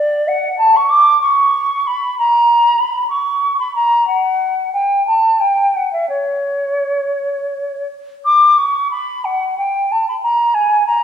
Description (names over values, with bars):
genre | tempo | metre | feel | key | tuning
classical, baroque-style fantasia for unaccompanied flute | 54-65 BPM (dotted quarters) | 6/8 | rubato | unclear | A4 = 444 Hz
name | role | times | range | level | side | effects
mellow hollow silver concert flute | solo | 0.0-11.0 s | C#5 to D6 | -13 LUFS | equal | none
room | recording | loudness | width
wet scoring stage reverb, RT60 1.6 s | heard from further back in the room | -13 LUFS | side -9 dB against mid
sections
0.0-8.3 A section; 8.3-11.0 B section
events
none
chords
none